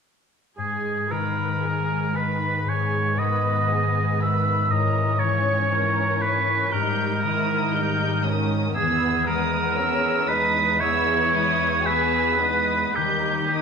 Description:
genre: classical, slow romantic movement for symphony orchestra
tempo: 58 BPM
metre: 4/4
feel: uneven beats, rubato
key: G# minor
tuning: A4 = 440 Hz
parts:
  - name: muted studio violin section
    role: melody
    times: 0.6-13.6 s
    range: G#5 to G6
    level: -33 LUFS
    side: left 2 dB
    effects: none
  - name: warm oboe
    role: second line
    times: 0.6-13.6 s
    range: G4 to E5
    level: -23 LUFS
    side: right 2 dB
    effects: none
  - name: muted studio viola section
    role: accompaniment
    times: 0.6-13.6 s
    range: D#3 to C#5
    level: -30 LUFS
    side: right 1 dB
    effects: none
  - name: concert harp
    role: arpeggios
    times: 0.6-13.6 s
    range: G#2 to B4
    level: -30 LUFS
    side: left 8 dB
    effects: none
  - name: muted studio cello section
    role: bass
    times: 0.6-13.6 s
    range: D#2 to G#2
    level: -27 LUFS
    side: equal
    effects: none
  - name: muted studio violin section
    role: second line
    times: 2.7-13.6 s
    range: B3 to G#4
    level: -31 LUFS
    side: left 3 dB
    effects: none
room: wet scoring stage reverb, RT60 1.8 s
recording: minimal, uncompressed stereo recording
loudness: -20 LUFS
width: side -6 dB against mid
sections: 0.6-13.6 A section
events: none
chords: 0.6 G#m; 4.7 A#dim/G#; 6.7 D#/G#; 8.8 Emaj7; 13.0 D#

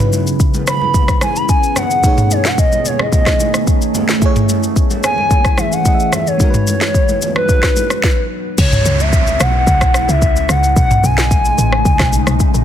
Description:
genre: amapiano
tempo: 110 BPM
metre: 4/4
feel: straight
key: C# minor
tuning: A4 = 440 Hz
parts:
  - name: FM electric piano with auto-pan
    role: accompaniment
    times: 0.0-8.1 s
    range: B2 to E5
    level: -22 LUFS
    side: equal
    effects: phaser
  - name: deep dark ambient pad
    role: sustained chords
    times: 0.0-12.6 s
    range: C#3 to G#4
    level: -21 LUFS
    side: equal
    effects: chorus, built-in reverb
  - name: afro-pop drum kit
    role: drums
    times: 0.0-12.6 s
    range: crash cymbal, kick drum, rim click, shaker, snare drum, toms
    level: -14 LUFS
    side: equal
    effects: soft clipping on snare
  - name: congas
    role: percussion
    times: 0.1-7.9 s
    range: none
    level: -26 LUFS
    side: right 1 dB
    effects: none
  - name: hollow clarinet-like synth lead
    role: melody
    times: 0.7-12.6 s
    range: B4 to B5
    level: -17 LUFS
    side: equal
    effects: chorus, ping-pong delay
  - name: woody log drum bass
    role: bass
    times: 8.6-12.6 s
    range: A1 to C#2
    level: -16 LUFS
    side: equal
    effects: none
  - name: downlifter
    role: sound effects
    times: 8.6-12.6 s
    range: none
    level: -24 LUFS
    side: right 1 dB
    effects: none
room: little or no reverb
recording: dense, heavily limited modern master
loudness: -11 LUFS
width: side -10 dB against mid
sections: 0.0-8.6 A section; 8.6-12.6 B section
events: stop 8.0-8.6; drop 8.6-12.6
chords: 0.0 C#m7; 2.0 B13; 4.2 Amaj7; 6.4 G#m7; 8.6 C#m7; 10.8 B13

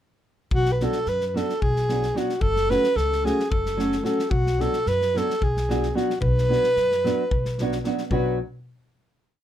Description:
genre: balkan folk, Balkan wedding band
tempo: 221 BPM (eighths)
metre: 7/8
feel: straight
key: B minor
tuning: A4 = 440 Hz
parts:
  - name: warm alto saxophone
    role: melody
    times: 0.5-8.4 s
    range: F#4 to B4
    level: -23 LUFS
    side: equal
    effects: none
  - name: upright bass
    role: bass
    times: 0.5-8.4 s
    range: F#1 to F#2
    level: -26 LUFS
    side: equal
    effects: none
  - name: natural country drum kit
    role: percussion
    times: 0.5-8.4 s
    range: kick drum, snare drum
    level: -30 LUFS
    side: left 1 dB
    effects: none
  - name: nylon-string guitar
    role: accompaniment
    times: 0.8-8.4 s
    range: F#3 to F#4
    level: -26 LUFS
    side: right 1 dB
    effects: none
room: light reverb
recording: minimal, uncompressed stereo recording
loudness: -20 LUFS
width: side -11 dB against mid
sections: 0.5-8.1 A section; 8.1-9.4 final chord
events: none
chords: 0.5 Bm; 2.4 F#m; 4.3 Bm

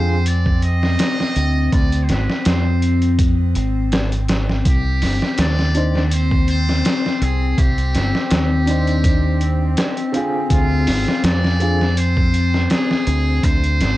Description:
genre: trip hop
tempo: 82 BPM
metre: 4/4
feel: swing 54% on 16ths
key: unclear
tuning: A4 = 439 Hz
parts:
  - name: trumpet with metal mute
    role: melody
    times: 0.0-14.0 s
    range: F4 to Eb5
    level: -25 LUFS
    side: right 1 dB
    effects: cassette tape, tape echo
  - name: warm upright piano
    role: accompaniment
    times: 0.0-0.1, 5.7-11.8 s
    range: D3 to C5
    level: -24 LUFS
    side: right 1 dB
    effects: tremolo, cassette tape
  - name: warbly tape-like pad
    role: sustained chords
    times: 0.0-14.0 s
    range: C4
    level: -23 LUFS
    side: left 4 dB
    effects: chorus, built-in reverb, cassette tape
  - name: deep dub fingered electric bass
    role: bass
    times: 0.0-14.0 s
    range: G1 to F2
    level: -18 LUFS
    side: equal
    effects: none
  - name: trip hop sampler-style drum kit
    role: drums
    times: 0.3-14.0 s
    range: hi-hat, kick drum, snare drum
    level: -19 LUFS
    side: equal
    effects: cassette tape
room: little or no reverb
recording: home recording on cassette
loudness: -15 LUFS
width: side -16 dB against mid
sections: 0.0-14.0 A section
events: none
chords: 0.0 Dm7b5; 4.6 Cmadd9; 10.5 Dm7b5

